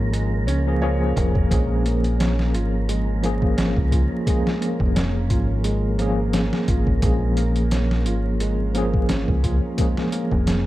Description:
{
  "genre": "trip hop",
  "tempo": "87 BPM",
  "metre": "4/4",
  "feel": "swing 55% on 16ths",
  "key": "Bb minor",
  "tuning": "A4 = 440 Hz",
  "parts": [
    { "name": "tine electric piano", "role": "accompaniment", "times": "0.0-10.7 s", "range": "F3 to Ab4", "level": "-24 LUFS", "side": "equal", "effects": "medium stereo tremolo, tape echo" },
    { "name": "felt-muted upright piano", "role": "arpeggios", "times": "0.0-10.7 s", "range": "Ab3 to Db5", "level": "-29 LUFS", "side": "right 3 dB", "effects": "vintage 12-bit sampler grit, digital delay" },
    { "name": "deep dub fingered electric bass", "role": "bass", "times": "0.0-10.7 s", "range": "F1 to Db2", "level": "-22 LUFS", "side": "equal", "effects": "tube saturation" },
    { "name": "wind-like tuned noise texture", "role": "texture", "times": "0.0-10.7 s", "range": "Bb4", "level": "-38 LUFS", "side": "right 1 dB", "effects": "built-in reverb" },
    { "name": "trip hop sampler-style drum kit", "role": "drums", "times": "0.1-10.7 s", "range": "hi-hat, kick drum, snare drum", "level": "-23 LUFS", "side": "equal", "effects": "overdrive" }
  ],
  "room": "light reverb, digital ambience",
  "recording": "dark, warm production, vinyl crackle",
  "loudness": "-19 LUFS",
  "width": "side -16 dB against mid",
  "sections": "0.0-10.7 A section",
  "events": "none",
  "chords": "0.0 Bbm7"
}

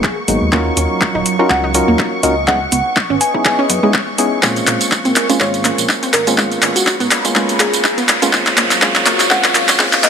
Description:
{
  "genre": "deep house",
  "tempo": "123 BPM",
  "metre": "4/4",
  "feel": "swing 56% on 16ths",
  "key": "unclear",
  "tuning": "A4 = 440 Hz",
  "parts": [
    { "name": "bell-like FM electric piano", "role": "melody", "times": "0.0-10.1 s", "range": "Gb4 to Ab5", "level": "-20 LUFS", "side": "left 1 dB", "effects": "chorus, low-pass filter, digital delay" },
    { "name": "dark analog pad", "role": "sustained chords", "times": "0.8-10.1 s", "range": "Gb3 to Eb6", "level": "-26 LUFS", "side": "right 2 dB", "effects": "chorus, sidechain pumping" },
    { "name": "deep house drum kit", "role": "drums", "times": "0.0-10.1 s", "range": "handclaps, hi-hat, tambourine", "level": "-14 LUFS", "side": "equal", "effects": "none" },
    { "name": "electronic kick drum", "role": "drums", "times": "0.0-9.9 s", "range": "none", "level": "-23 LUFS", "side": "equal", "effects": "high-pass filter on kick" },
    { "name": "soft string machine", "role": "texture", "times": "0.0-10.1 s", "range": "Db6", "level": "-26 LUFS", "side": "left 1 dB", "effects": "ensemble chorus" },
    { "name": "percussive organ stab", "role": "stabs", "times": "0.3-10.1 s", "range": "Gb3 to Bb4", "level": "-18 LUFS", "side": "equal", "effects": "chorus, sidechain pumping, tape echo" },
    { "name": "smooth synth bass", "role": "bass", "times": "0.3-10.1 s", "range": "Eb1 to Bb2", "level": "-24 LUFS", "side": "equal", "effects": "tube saturation, sidechain pumping" },
    { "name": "analog pluck", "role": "arpeggios", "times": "0.5-10.1 s", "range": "Ab3 to F4", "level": "-22 LUFS", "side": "right 3 dB", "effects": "chorus, cassette tape, sidechain pumping, tape echo" },
    { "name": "riser", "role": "sound effects", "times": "5.8-10.1 s", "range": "none", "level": "-22 LUFS", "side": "right 1 dB", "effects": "none" }
  ],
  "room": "moderate lush hall reverb, RT60 2.3 s",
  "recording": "high-pass filter",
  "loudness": "-12 LUFS",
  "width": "side -7 dB against mid",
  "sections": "0.0-10.1 A section",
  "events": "build-up 0.0-10.1; drum fill 0.0-10.1; filter sweep on analog synth pad 0.0-10.1; filter sweep on synth arpeggio sound 0.0-10.1; filter sweep 0.0-10.1; riser 5.8-10.1",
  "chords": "0.0 Abm9; 0.5 Ebm9; 2.5 Dbm9; 4.4 Bbm9; 6.4 Abmadd9; 8.3 Ebm9"
}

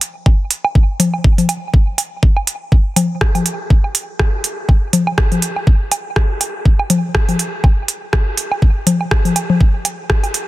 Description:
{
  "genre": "techno",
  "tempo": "122 BPM",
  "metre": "4/4",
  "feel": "swing 57% on 16ths",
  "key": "none",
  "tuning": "none",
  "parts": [
    { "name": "minimal click drum kit", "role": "drums", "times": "0.0-10.5 s", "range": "hi-hat, rim click", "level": "-20 LUFS", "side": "right 2 dB", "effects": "soft clipping on snare" },
    { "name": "electronic kick drum", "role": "drums", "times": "0.3-10.2 s", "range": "none", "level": "-12 LUFS", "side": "equal", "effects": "none" },
    { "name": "woodblock and congas", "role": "percussion", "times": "0.3-10.3 s", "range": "none", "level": "-18 LUFS", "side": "left 2 dB", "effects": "tape echo" }
  ],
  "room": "light reverb",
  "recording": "dense, heavily limited modern master",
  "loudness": "-13 LUFS",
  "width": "side -17 dB against mid",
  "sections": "0.0-10.5 A section",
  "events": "none",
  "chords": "none"
}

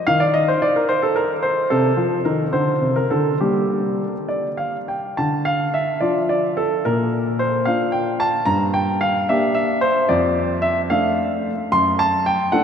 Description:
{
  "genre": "classical-period piano sonatina",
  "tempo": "67-75 BPM (dotted quarters)",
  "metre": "6/8",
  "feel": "rubato",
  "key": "G minor, D minor from 5.2 s",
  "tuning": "A4 = 441 Hz",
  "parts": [
    { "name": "warm baby grand piano", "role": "solo", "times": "0.0-12.6 s", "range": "F2 to C6", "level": "-17 LUFS", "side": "equal", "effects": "none" }
  ],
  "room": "wet cathedral reverb, RT60 5.4 s",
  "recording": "in a vast, echoing space",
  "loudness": "-17 LUFS",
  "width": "side -7 dB against mid",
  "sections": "0.0-5.2 A section; 5.2-12.6 B section",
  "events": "none",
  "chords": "0.1 N.C.; 1.7 Cm; 2.5 Bbmaj9; 3.4 Gm; 5.2 Dm; 6.8 Bb; 8.5 Gm; 10.1 Dm/F; 11.7 D/F# (rootless)"
}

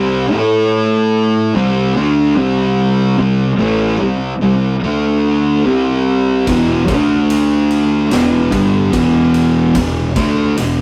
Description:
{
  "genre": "stoner and doom metal",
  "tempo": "73 BPM",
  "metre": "4/4",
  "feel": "straight",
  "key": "unclear",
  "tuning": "A4 = 440 Hz",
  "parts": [
    { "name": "thick fuzz guitar", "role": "riff", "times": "0.0-10.8 s", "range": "E2 to A4", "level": "-14 LUFS", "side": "equal", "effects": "distortion" },
    { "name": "fuzz fingered electric bass", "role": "bass", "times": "0.0-10.8 s", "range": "E1 to A2", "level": "-25 LUFS", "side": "equal", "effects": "overdrive" },
    { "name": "oversized low-tuned drum kit", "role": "drums", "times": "6.5-10.8 s", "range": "kick drum, ride cymbal, snare drum", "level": "-25 LUFS", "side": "equal", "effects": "none" }
  ],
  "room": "moderate studio ambience, RT60 0.5 s",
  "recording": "rough rehearsal-room recording",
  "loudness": "-14 LUFS",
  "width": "mono",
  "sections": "0.0-10.8 A section",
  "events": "none",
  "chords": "0.3 A5; 1.6 C5; 4.8 D5; 5.7 C5; 6.5 E5; 6.9 D5; 8.1 Em"
}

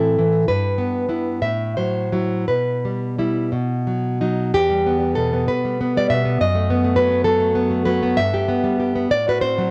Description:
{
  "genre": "romantic piece for solo classical guitar",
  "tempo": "56-70 BPM (dotted quarters)",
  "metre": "6/8",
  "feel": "rubato",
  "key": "E minor",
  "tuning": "A4 = 441 Hz",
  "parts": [
    { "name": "nylon-string guitar", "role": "solo", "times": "0.0-9.7 s", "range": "E2 to E5", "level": "-20 LUFS", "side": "equal", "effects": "cassette tape" }
  ],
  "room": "light reverb, small room ambience",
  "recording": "home recording on cassette, nothing above 10.8 kHz",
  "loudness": "-20 LUFS",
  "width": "mono",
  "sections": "0.0-4.5 A section; 4.5-9.7 B section",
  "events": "none",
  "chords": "0.5 Em/G; 1.4 F#m7b5/A; 2.5 Em/B; 3.5 B; 4.5 Em; 6.4 B7/F#; 8.2 Em/G; 9.1 F#dim/A"
}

